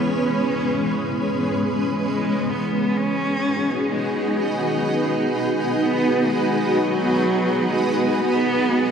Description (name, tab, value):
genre	ambient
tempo	free time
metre	none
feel	none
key	unclear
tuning	A4 = 440 Hz
part	rich cello	melody	0.0-8.9 s	F#3 to C#4	-25 LUFS	equal	diffuse ambient delay
part	granular cloud pad	sustained chords	0.0-8.9 s	E3 to B4	-20 LUFS	equal	built-in reverb
part	soft round pluck	arpeggios	0.0-1.6 s	none	barely audible	none	none
room	wet huge ambient reverb, RT60 8.2 s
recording	cassette tape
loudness	-19 LUFS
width	side -7 dB against mid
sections	0.0-8.9 A section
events	none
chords	0.0 C#m7; 2.0 G#m7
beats	free time